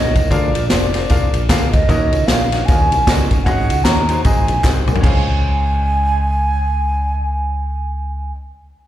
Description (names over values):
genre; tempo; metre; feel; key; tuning
uptempo gospel; 152 BPM; 4/4; swing 61% on 8ths; Db major; A4 = 441 Hz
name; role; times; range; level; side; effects
baroque flute; melody; 0.0-8.3 s; D5 to Bb5; -20 LUFS; right 1 dB; slapback echo
clear baby grand piano; accompaniment; 0.0-8.3 s; Db2 to Gb5; -24 LUFS; left 2 dB; slapback echo
fingered electric bass; bass; 0.0-8.3 s; F1 to Eb2; -18 LUFS; equal; none
swinging big-band drum kit; drums; 0.2-5.1 s; crash cymbal, kick drum, ride cymbal, snare drum, toms; -16 LUFS; equal; none
tambourine and handclaps; percussion; 0.2-5.3 s; none; -30 LUFS; equal; none
room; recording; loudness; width
light reverb, studio ambience; live gig heard through the venue's PA, recital hall reverb; -14 LUFS; side -12 dB against mid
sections
0.0-5.0 A section; 5.0-8.2 B section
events
drum fill 4.6-5.0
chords
0.3 Bb7; 1.9 Ebm7; 3.5 Ab7sus4; 4.2 Ab7; 5.0 Dbmaj7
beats
| 0.31 0.70 1.10 1.49 | 1.89 2.28 2.67 3.07 | 3.46 3.85 4.25 4.64 | 5.04 5.43 5.83 6.22 | 6.61 7.01 7.40 7.79